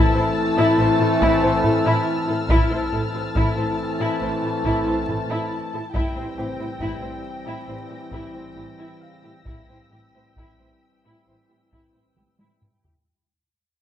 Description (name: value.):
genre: cinematic, suspense film score.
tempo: 66-71 BPM.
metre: 4/4.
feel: straight.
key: unclear.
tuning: A4 = 439 Hz.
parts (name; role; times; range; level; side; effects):
muted symphonic violin section; melody; 0.0-12.8 s; G5 to A5; -30 LUFS; left 3 dB; none.
muted symphonic violin section; second line; 0.0-12.9 s; E4 to C5; -29 LUFS; left 1 dB; none.
muted symphonic viola section; accompaniment; 0.0-12.9 s; E4; -28 LUFS; equal; none.
bright trombone section; sustained chords; 0.0-12.7 s; E3 to A3; -28 LUFS; right 3 dB; none.
warm French horn section; sustained chords; 0.0-12.7 s; E3 to E4; -26 LUFS; left 4 dB; none.
muted symphonic violin section; texture; 0.0-12.6 s; E6 to Bb6; -37 LUFS; left 2 dB; none.
muted symphonic cello section; bass; 0.1-12.9 s; A2; -28 LUFS; equal; none.
muted symphonic double bass section; bass; 0.8-12.2 s; A1; -31 LUFS; right 1 dB; none.
taiko ensemble; drums; 1.2-13.3 s; none; -24 LUFS; equal; none.
felt-muted upright piano; texture; 6.4-13.1 s; C4 to F5; -39 LUFS; left 2 dB; none.
room: wet scoring stage reverb, RT60 2.0 s.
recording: vinyl crackle.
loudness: -19 LUFS.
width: side -10 dB against mid.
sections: 0.0-13.1 A section.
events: fade-out 0.0-13.1; drum fill 12.2-13.1.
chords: 0.0 Am; 5.9 C/A.